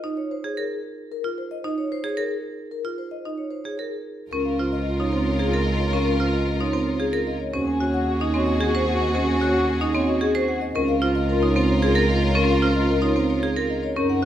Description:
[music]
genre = classical, minimalist pattern music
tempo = 112 BPM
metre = 3/4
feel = straight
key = Db major from 4.3 s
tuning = A4 = 440 Hz
[part]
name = vibraphone with medium mallets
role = melody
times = 0.0-14.2 s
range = Ab4 to Ab5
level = -28 LUFS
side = left 8 dB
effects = none
[part]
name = marimba with hard mallets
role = arpeggios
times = 0.0-14.2 s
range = C4 to C5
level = -24 LUFS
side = right 3 dB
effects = none
[part]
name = mellow clarinet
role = second line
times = 4.3-14.2 s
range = Eb4 to Gb4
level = -30 LUFS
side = right 1 dB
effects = none
[part]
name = rich symphonic violin section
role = sustained chords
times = 4.3-14.2 s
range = Eb4 to Bb4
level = -30 LUFS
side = left 3 dB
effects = none
[part]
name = rich double bass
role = bass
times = 4.3-14.2 s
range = Db2 to Gb2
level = -25 LUFS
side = right 1 dB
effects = none
[sound]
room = moderate recital hall reverb, RT60 1.4 s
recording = none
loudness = -20 LUFS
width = side -11 dB against mid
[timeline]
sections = 0.0-4.3 A section; 4.3-14.2 B section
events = none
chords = 0.0 Eb9sus4; 4.3 Db69; 7.5 Ab7sus4/Eb; 10.7 Db69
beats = 0.03 0.57 | 1.11 1.64 2.18 | 2.71 3.25 3.78 | 4.32 4.86 5.39 | 5.93 6.46 7.00 | 7.53 8.07 8.61 | 9.14 9.68 10.21 | 10.75 11.28 11.82 | 12.36 12.89 13.43 | 13.96

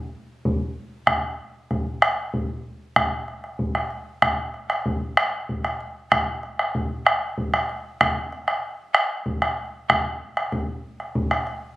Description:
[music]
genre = andean folk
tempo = 64 BPM (dotted quarters)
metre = 6/8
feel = straight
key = none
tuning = none
[part]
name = bombo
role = percussion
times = 0.5-11.5 s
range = none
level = -21 LUFS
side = equal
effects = none
[sound]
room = wet small room reverb, RT60 0.6 s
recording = recorded on a phone in the room, studio reverb, compression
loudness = -22 LUFS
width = side -17 dB against mid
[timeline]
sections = 0.0-3.6 A section; 3.6-11.8 B section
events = none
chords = none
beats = 0.76 | 1.70 2.64 | 3.59 4.53 | 5.48 6.42 | 7.37 8.31 | 9.26 10.21 | 11.15

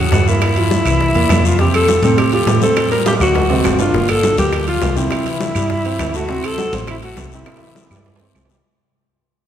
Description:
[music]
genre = Afro-Cuban jazz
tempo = 204 BPM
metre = 4/4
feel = straight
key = unclear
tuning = A4 = 442 Hz
[part]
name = breathy alto saxophone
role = melody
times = 0.0-8.3 s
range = E4 to Bb4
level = -18 LUFS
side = left 1 dB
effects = none
[part]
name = warm grand piano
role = accompaniment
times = 0.0-8.6 s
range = Bb2 to C5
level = -21 LUFS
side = right 2 dB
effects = none
[part]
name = woody fretless electric bass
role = bass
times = 0.0-8.6 s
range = G1 to A2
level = -18 LUFS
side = equal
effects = none
[part]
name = bongos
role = percussion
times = 0.1-8.6 s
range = none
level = -27 LUFS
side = left 5 dB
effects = none
[part]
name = congas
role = percussion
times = 0.1-8.6 s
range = none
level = -26 LUFS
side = equal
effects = none
[part]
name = guiro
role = percussion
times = 0.1-8.6 s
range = none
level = -30 LUFS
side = left 7 dB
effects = none
[part]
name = timbales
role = percussion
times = 0.1-8.6 s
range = none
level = -26 LUFS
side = right 4 dB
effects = none
[part]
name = claves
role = percussion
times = 0.4-8.5 s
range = none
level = -31 LUFS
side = right 4 dB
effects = none
[sound]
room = wet church reverb, RT60 3.2 s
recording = recorded in a church or concert hall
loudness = -13 LUFS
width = side -10 dB against mid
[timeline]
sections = 0.0-3.9 A section; 3.9-8.6 B section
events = drum fill 3.1-3.9, 7.5-8.6; fade-out 3.9-8.6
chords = 0.4 Gm7; 1.0 C7; 1.6 Fadd9; 2.8 Dadd11; 3.4 D7; 3.9 Gm7; 5.1 C; 6.3 Am6; 7.5 C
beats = 0.13 | 0.42 0.71 1.00 1.30 | 1.59 1.89 2.18 2.47 | 2.77 3.06 3.35 3.65 | 3.94 4.23 4.53 4.82 | 5.11 5.41 5.70 6.00 | 6.29 6.58 6.88 7.17 | 7.47 7.76 8.05 8.35

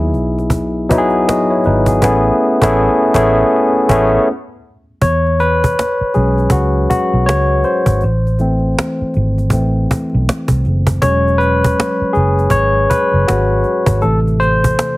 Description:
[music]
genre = R&B, neo-soul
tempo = 80 BPM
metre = 4/4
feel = swing 59% on 16ths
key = E major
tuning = A4 = 437 Hz
[part]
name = barky tine electric piano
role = accompaniment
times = 0.0-15.0 s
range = C3 to D#5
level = -14 LUFS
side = left 1 dB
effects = overdrive
[part]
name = vintage muted fingered electric bass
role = bass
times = 0.0-14.7 s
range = E1 to E2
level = -16 LUFS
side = equal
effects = none
[part]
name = cajon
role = drums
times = 0.1-15.0 s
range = none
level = -17 LUFS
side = equal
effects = none
[sound]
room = light reverb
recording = heavily compressed radio sound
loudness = -12 LUFS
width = side -19 dB against mid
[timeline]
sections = 0.0-5.0 A section; 5.0-15.0 B section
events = band accent 2.0-5.0; tine electric piano solo 5.0-15.0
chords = 0.0 Emaj7; 2.0 Amaj9; 4.3 N.C.; 5.0 E69; 8.0 Am; 11.0 E69; 14.0 Am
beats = 0.52 1.27 | 2.02 2.77 3.52 4.27 | 5.02 5.77 6.52 7.27 | 8.02 8.77 9.52 10.27 | 11.02 11.77 12.52 13.27 | 14.02 14.77

